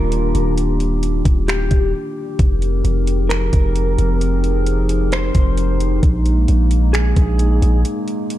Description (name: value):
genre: hip hop, atmospheric cloud-rap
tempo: 132 BPM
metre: 4/4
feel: half-time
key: Eb major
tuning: A4 = 440 Hz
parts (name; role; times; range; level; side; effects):
- mellow electric guitar; melody; 0.0-7.8 s; G4 to C5; -26 LUFS; equal; spring reverb, ping-pong delay
- dark analog pad; sustained chords; 0.0-8.4 s; Eb3 to Bb4; -22 LUFS; left 1 dB; wide subtle chorus, sidechain pumping
- long sustained 808-style bass; bass; 0.0-7.8 s; Eb1 to Bb1; -17 LUFS; equal; none
- smooth R&B drum kit; drums; 0.1-8.4 s; finger snaps, hi-hat, kick drum; -18 LUFS; equal; none
room: little or no reverb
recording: dark, warm production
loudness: -14 LUFS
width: side -14 dB against mid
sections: 0.0-8.4 A section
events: break 1.9-2.4, 7.8-8.4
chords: 0.0 Ebmaj9; 2.4 Fm11; 6.0 Bb7sus4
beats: 0.12 | 0.57 1.03 1.48 1.94 | 2.39 2.85 3.30 3.76 | 4.21 4.67 5.12 5.58 | 6.03 6.48 6.94 7.39 | 7.85 8.30